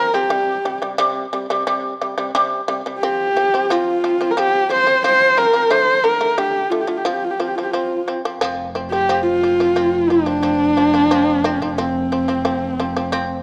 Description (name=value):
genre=mongolian traditional, Mongolian folk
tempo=89 BPM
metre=4/4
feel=straight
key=F zhi mode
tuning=A4 = 444 Hz
part: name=dark horsehead fiddle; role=melody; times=0.0-13.4 s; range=C4 to C5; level=-18 LUFS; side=equal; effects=none
part: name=shamisen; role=arpeggios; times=0.0-13.4 s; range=C3 to C4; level=-24 LUFS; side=equal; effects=none
part: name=warm double bass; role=drone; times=8.4-13.4 s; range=F1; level=-30 LUFS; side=equal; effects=none
room=wet echo chamber reverb, RT60 1.4 s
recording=none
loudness=-18 LUFS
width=mono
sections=0.0-8.4 A section; 8.4-13.4 B section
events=none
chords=0.3 C5; 3.0 F5; 5.7 D5; 7.1 F5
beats=| 0.30 0.97 1.65 2.33 | 3.00 3.68 4.36 5.03 | 5.71 6.38 7.05 7.73 | 8.40 9.08 9.75 10.43 | 11.10 11.78 12.46 13.13